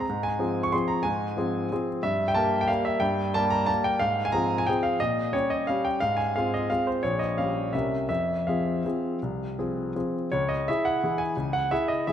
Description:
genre	classical, piano waltz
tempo	156-196 BPM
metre	3/4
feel	rubato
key	F minor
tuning	A4 = 438 Hz
part	bright grand piano	solo	0.0-12.1 s	Bb1 to Db6	-24 LUFS	equal	none
room	moderate concert hall reverb, RT60 2.0 s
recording	none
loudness	-24 LUFS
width	side -9 dB against mid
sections	0.0-10.3 A section; 10.3-12.1 B section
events	none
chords	0.1 Fm/Ab; 2.0 Gm69; 4.0 Fm/Ab; 5.0 Gdim/Bb; 6.0 Fm/Ab; 7.0 Gm7b5/Bb; 7.7 C7b9; 8.1 Fm; 10.3 C#m

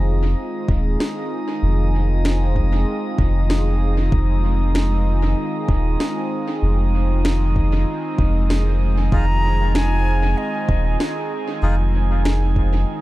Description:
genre	ambient dub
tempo	96 BPM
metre	4/4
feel	straight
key	F minor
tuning	A4 = 441 Hz
part	warm analog pad	sustained chords	0.0-13.0 s	Eb3 to Ab4	-26 LUFS	right 1 dB	chorus
part	soft dub sub bass	bass	0.0-12.8 s	Eb1 to F1	-18 LUFS	equal	none
part	drifting glass-harmonics texture	texture	0.0-13.0 s	Eb4 to Eb5	-28 LUFS	right 1 dB	chorus, built-in reverb
part	electronic kick drum	drums	0.7-12.7 s	none	-20 LUFS	equal	overdrive, small room ambience
part	electronic snare drum	drums	1.0-12.4 s	none	-28 LUFS	equal	overdrive, small room ambience, dub echo
part	breathy silver concert flute	melody	9.1-11.3 s	Eb5 to Bb5	-26 LUFS	equal	dub echo
part	melodica	stabs	9.1-11.8 s	Eb4 to Ab4	-33 LUFS	left 1 dB	dub echo
room	digital ambience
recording	echo-heavy mix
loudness	-17 LUFS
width	side -17 dB against mid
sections	0.0-13.0 A section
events	none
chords	0.0 Fm7

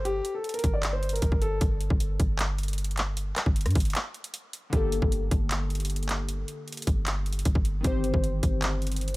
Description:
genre	hip hop, trap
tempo	154 BPM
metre	4/4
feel	half-time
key	G minor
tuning	A4 = 439 Hz
part	dark concert grand piano	melody	0.0-1.6 s	G4 to D5	-32 LUFS	left 1 dB	tape echo
part	warm 808-style bass	bass	0.0-9.2 s	G1 to G2	-28 LUFS	equal	none
part	trap drum kit	drums	0.1-9.2 s	handclaps, hi-hat, kick drum, rim click	-28 LUFS	equal	none
part	glassy digital keys	accompaniment	4.7-9.2 s	D3 to C5	-32 LUFS	left 3 dB	chorus
room	little or no reverb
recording	none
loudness	-25 LUFS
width	side -20 dB against mid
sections	0.0-9.2 A section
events	break 3.9-4.7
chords	0.0 Gmadd9; 1.6 N.C.; 4.7 Gmadd9; 7.8 Cm/G

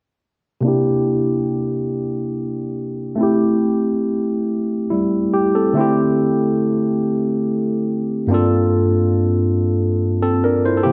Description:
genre	R&B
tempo	47 BPM (dotted quarters)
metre	6/8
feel	straight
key	G dorian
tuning	A4 = 440 Hz
part	barky tine electric piano	solo	0.6-10.9 s	G2 to C5	-18 LUFS	equal	subtle chorus, low-pass filter, slapback echo
room	moderate echo chamber reverb, RT60 2.4 s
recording	dark, warm production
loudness	-19 LUFS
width	mono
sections	0.6-10.8 A section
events	filter sweep on tine electric piano 0.6-10.8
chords	0.6 C9; 3.2 Am7; 5.7 D9sus4; 8.3 Gm11

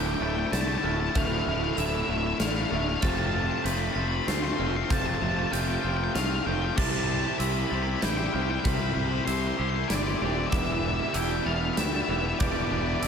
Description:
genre	post-rock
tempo	96 BPM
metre	3/4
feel	straight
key	unclear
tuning	A4 = 440 Hz
part	octave-fuzz lead guitar	melody	0.0-13.1 s	D5 to C6	-32 LUFS	left 1 dB	distortion, slapback echo, analog delay
part	glockenspiel with soft plastic mallets	arpeggios	0.0-13.1 s	D6 to F7	-40 LUFS	right 3 dB	slapback echo, analog delay
part	twangy electric guitar	arpeggios	0.0-13.1 s	D2 to C5	-36 LUFS	left 4 dB	none
part	raw garage guitar	riff	0.0-13.1 s	D2 to C5	-33 LUFS	right 10 dB	overdrive, slapback echo
part	tight distorted guitar	riff	0.0-13.1 s	D2 to C5	-32 LUFS	left 12 dB	distortion, slapback echo
part	fuzz fingered electric bass	bass	0.0-13.1 s	D1 to D2	-30 LUFS	equal	overdrive
part	huge arena drum kit	drums	0.5-13.1 s	crash cymbal, hi-hat, kick drum, snare drum	-31 LUFS	equal	none
room	light reverb, small room ambience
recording	none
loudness	-24 LUFS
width	side -7 dB against mid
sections	0.0-13.1 A section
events	none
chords	0.0 Dmadd9; 3.0 F; 6.8 C; 10.5 Em7

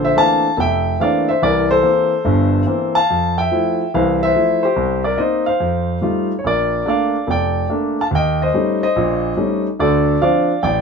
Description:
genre	jazz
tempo	144 BPM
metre	4/4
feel	swing 66% on 8ths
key	F major, Bb major from 6.4 s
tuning	A4 = 439 Hz
part	warm concert grand piano	solo	0.0-10.8 s	F1 to A5	-14 LUFS	equal	none
room	moderate studio reverb, RT60 0.5 s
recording	minimal, uncompressed stereo recording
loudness	-15 LUFS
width	side -5 dB against mid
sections	0.0-6.4 A section; 6.4-10.8 B section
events	none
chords	0.0 Bbmaj9#11; 1.4 C7; 3.1 Fmaj7; 4.8 Cm7; 5.6 F9; 6.4 Bbmaj7; 8.1 Eb7#11; 9.8 Dm7

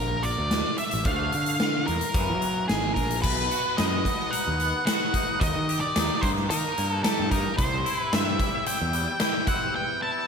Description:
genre	quiet-loud alternative rock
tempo	110 BPM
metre	4/4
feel	straight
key	unclear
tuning	A4 = 440 Hz
part	octave-fuzz lead guitar	melody	0.0-10.3 s	Ab4 to A5	-28 LUFS	equal	distortion, slapback echo, analog delay
part	twangy electric guitar	arpeggios	0.0-10.3 s	E2 to G4	-32 LUFS	left 1 dB	ensemble chorus, slapback echo
part	fuzz picked electric bass	bass	0.0-9.1 s	Ab1 to F#3	-29 LUFS	equal	overdrive
part	big rock drum kit	drums	0.2-9.6 s	crash cymbal, hi-hat, kick drum, snare drum	-27 LUFS	equal	none
room	moderate lush hall reverb, RT60 2.0 s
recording	big arena sound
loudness	-23 LUFS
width	side -6 dB against mid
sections	0.0-3.2 A section; 3.2-10.3 B section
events	break 9.8-10.3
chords	0.0 Bb; 1.1 Dm; 2.1 F#7; 3.2 B; 5.4 Eb; 7.6 C; 9.8 Em

